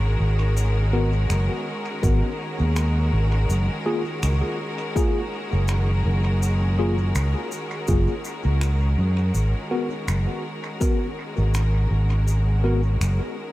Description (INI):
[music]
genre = ambient dub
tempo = 82 BPM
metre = 4/4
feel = swing 56% on 16ths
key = unclear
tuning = A4 = 440 Hz
[part]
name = bright studio string section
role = sustained chords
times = 0.0-13.5 s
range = D#3 to A#4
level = -30 LUFS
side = left 1 dB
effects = none
[part]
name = fingered electric bass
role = bass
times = 0.0-13.2 s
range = F#1 to F#2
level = -20 LUFS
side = equal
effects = none
[part]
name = cabasa and finger snaps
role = drums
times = 0.6-13.2 s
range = none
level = -37 LUFS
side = equal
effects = dub echo
[part]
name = tine electric piano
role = stabs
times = 0.9-12.8 s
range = A#3 to A#4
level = -29 LUFS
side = left 2 dB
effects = overdrive, fast stereo tremolo, low-pass filter, dub echo
[part]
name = electronic kick drum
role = drums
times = 2.0-11.0 s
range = none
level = -23 LUFS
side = equal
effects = overdrive
[sound]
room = light reverb, small room ambience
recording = echo-heavy mix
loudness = -20 LUFS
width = side -17 dB against mid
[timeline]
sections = 0.0-13.5 A section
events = none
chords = 0.0 G#7sus2; 3.5 F#maj9; 9.3 G#m9